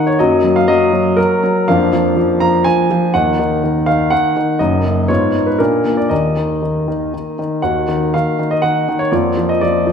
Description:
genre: classical-period piano sonatina.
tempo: 122 BPM.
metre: 3/4.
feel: straight.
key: Eb minor.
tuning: A4 = 439 Hz.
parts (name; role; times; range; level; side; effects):
clear concert grand piano; solo; 0.0-9.9 s; Gb1 to Bb5; -12 LUFS; equal; none.
room: wet recital hall reverb, RT60 1.8 s.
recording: none.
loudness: -13 LUFS.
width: side -7 dB against mid.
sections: 0.0-7.6 A section; 7.6-9.9 A section.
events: none.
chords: 0.2 Ebm/Gb; 1.7 Bb7/F; 3.1 Ebm; 4.6 Ebm/Gb; 5.1 Fdim/Ab; 5.6 Bb; 6.1 Eb5; 7.6 Ebm; 9.1 Bb/F.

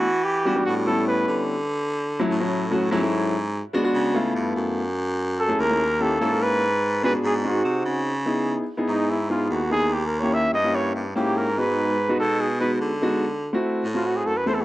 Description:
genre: jazz.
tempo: 146 BPM.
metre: 4/4.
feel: straight.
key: C# minor from 8.3 s.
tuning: A4 = 439 Hz.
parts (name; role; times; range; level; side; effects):
breathy trumpet; melody; 0.0-1.5, 5.4-14.6 s; D#4 to E5; -24 LUFS; right 1 dB; none.
warm concert grand piano; accompaniment; 0.0-14.6 s; F#3 to A#4; -24 LUFS; left 1 dB; none.
raspy baritone saxophone; bass; 0.0-14.6 s; D#2 to E3; -26 LUFS; equal; none.
room: studio reverb.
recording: dry, close 1970s-style studio recording.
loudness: -20 LUFS.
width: side -16 dB against mid.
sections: 0.0-8.3 A section; 8.3-14.6 B section.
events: trumpet solo 8.3-14.6.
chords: 0.0 Em9; 0.9 A9; 1.7 Dmaj7; 3.3 G#m7b5; 4.2 C#7alt; 5.0 F#m7; 5.8 D#7b9; 6.6 G#m7b5; 7.4 G#7; 8.3 C#m7; 9.9 D#7b9; 11.6 G#m7; 13.2 D9.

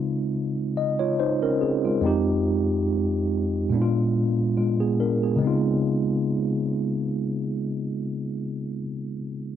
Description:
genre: R&B.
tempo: 71 BPM.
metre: 4/4.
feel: swing 54% on 16ths.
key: Db major.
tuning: A4 = 437 Hz.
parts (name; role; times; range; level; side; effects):
tine electric piano; solo; 0.0-9.6 s; F2 to Eb5; -22 LUFS; equal; medium stereo tremolo.
room: light reverb.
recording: none.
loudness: -22 LUFS.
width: side -10 dB against mid.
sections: 0.0-5.4 A section; 5.4-8.8 B section.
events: none.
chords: 0.0 Dbmaj9; 2.0 Fm7; 3.7 Bb7b9; 5.4 Dbmaj9.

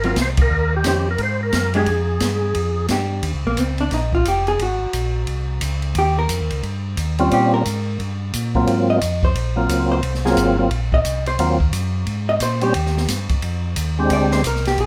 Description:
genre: soul jazz organ trio.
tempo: 176 BPM.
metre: 4/4.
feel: swing 62% on 8ths.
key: Eb mixolydian.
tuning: A4 = 440 Hz.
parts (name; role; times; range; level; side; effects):
percussive tonewheel organ; melody; 0.0-2.9, 7.2-14.4 s; Gb3 to C5; -22 LUFS; equal; slow rotary speaker, overdrive, chorus vibrato.
vintage hollow-body jazz guitar; accompaniment; 0.0-14.9 s; Eb3 to Eb5; -24 LUFS; equal; none.
mellow tonewheel organ; bass; 0.0-14.9 s; F1 to Bb2; -24 LUFS; equal; chorus vibrato, slow rotary speaker.
open jazz drum kit; drums; 0.0-14.9 s; hi-hat, kick drum, ride cymbal, snare drum; -27 LUFS; equal; none.
room: light reverb.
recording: none.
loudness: -20 LUFS.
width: mono.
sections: 0.0-3.2 A section; 3.2-14.9 B section.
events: band accent 0.3; hollow-body jazz guitar solo 3.2-14.9.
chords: 0.0 Ab13; 0.5 Eb13; 1.2 Absus2; 1.9 Fm69; 3.2 Ebsus2; 4.6 Ab9; 6.0 Eb13; 8.7 Ab13; 12.7 Ebadd9; 14.1 Bb13.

